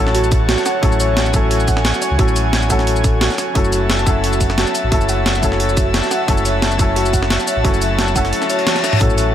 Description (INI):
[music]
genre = liquid drum and bass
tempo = 176 BPM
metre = 4/4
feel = swing 53% on 16ths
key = unclear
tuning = A4 = 442 Hz
[part]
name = felt-muted upright piano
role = accompaniment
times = 0.0-9.3 s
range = F#3 to A4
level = -21 LUFS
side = left 2 dB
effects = ping-pong delay
[part]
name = airy breathy pad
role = sustained chords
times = 0.0-9.3 s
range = F#4 to A5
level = -21 LUFS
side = equal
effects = chorus, sidechain pumping
[part]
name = harp-like synth pluck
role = arpeggios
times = 0.0-9.2 s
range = F#4 to F#5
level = -24 LUFS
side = right 4 dB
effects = chorus, digital delay
[part]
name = sub bass with octave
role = bass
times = 0.0-9.3 s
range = F#1 to C#2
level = -19 LUFS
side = equal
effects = none
[part]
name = breakbeat sampler-style drum kit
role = drums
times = 0.1-9.3 s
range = hi-hat, shaker, snare drum, toms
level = -21 LUFS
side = equal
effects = none
[part]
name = electronic kick drum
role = drums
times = 0.3-9.1 s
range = none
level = -17 LUFS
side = equal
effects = none
[part]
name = reverse cymbal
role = sound effects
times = 8.5-9.0 s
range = none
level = -24 LUFS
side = left 7 dB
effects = none
[sound]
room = little or no reverb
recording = none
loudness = -13 LUFS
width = side -10 dB against mid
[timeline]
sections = 0.0-9.3 A section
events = reverse cymbal 8.5-9.0; drum fill 8.7-9.0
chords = 0.0 A6; 3.6 F#m7